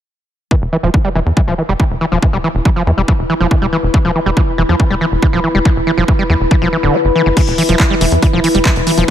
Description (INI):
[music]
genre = psychedelic trance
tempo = 140 BPM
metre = 4/4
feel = straight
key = unclear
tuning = A4 = 440 Hz
[part]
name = overdriven acid bass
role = riff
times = 0.5-9.1 s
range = D3 to B3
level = -16 LUFS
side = equal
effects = auto-pan, sidechain pumping, digital delay
[part]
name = electronic kick drum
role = drums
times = 0.5-9.1 s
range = none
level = -14 LUFS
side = equal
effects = overdrive
[part]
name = deep dark ambient pad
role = texture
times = 2.1-9.1 s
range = E4 to B5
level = -19 LUFS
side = left 2 dB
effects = chorus, built-in reverb, sidechain pumping
[part]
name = tight sequencer bass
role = bass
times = 0.6-9.0 s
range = D1 to E2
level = -16 LUFS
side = equal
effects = none
[part]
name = bubbling stepped-filter texture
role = sustained chords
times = 7.6-9.1 s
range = E3 to E4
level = -19 LUFS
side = right 1 dB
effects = chorus, built-in reverb, sidechain pumping
[part]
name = techno drum kit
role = drums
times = 7.4-9.1 s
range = crash cymbal, handclaps, hi-hat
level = -19 LUFS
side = equal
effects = overdrive, low-pass filter on hats, low-pass filter on cymbals, low-pass filter on snare
[sound]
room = light reverb, digital ambience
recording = none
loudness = -11 LUFS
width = side -10 dB against mid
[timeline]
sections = 0.5-7.4 A section; 7.4-9.1 B section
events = filter sweep on acid bass 0.5-7.4; kick drops out 6.9-7.4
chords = 0.5 E5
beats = | 0.51 0.94 1.37 1.80 | 2.23 2.65 3.08 3.51 | 3.94 4.37 4.80 5.22 | 5.65 6.08 6.51 6.94 | 7.37 7.80 8.22 8.65 | 9.08